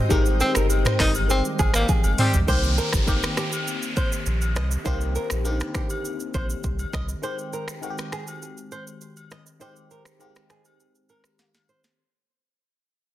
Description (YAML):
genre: afrobeats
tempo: 101 BPM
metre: 4/4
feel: straight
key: unclear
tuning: A4 = 440 Hz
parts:
  - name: barking FM electric piano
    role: accompaniment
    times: 0.0-12.0 s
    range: D3 to G4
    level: -30 LUFS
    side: left 3 dB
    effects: phaser
  - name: ethereal airy pad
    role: sustained chords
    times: 0.0-2.4 s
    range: C5 to G5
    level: -37 LUFS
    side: right 1 dB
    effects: ensemble chorus, built-in reverb
  - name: flamenco guitar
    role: riff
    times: 0.1-11.8 s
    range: G4 to Eb5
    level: -32 LUFS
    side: right 3 dB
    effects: digital delay
  - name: warm sub bass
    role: bass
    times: 0.1-7.1 s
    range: G1 to C2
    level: -24 LUFS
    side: equal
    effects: none
  - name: afro-pop drum kit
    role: drums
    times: 0.1-12.0 s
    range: finger snaps, handclaps, hi-hat, kick drum, rim click, shaker, snare drum, toms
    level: -25 LUFS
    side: equal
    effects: soft clipping on snare
  - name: agogo bells and woodblock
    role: percussion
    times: 0.1-11.7 s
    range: none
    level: -37 LUFS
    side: left 6 dB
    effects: none
  - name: breathy tenor saxophone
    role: melody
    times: 0.4-2.3 s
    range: Bb3 to Eb4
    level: -26 LUFS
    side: equal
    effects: digital delay
  - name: mellow horn section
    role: second line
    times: 1.7-2.4 s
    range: Eb3 to G4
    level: -30 LUFS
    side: left 2 dB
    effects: none
  - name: downlifter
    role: sound effects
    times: 2.5-7.2 s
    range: none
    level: -32 LUFS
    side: equal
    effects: none
room: light reverb, studio ambience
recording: dense, heavily limited modern master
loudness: -21 LUFS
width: side -14 dB against mid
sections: 0.0-2.5 A section; 2.5-12.0 B section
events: band accent 0.1-2.5; drum fill 1.9-2.5, 11.4-12.0; fade-out 2.5-12.0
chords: 0.0 Abmaj7; 2.5 Cm7; 7.2 Abmaj7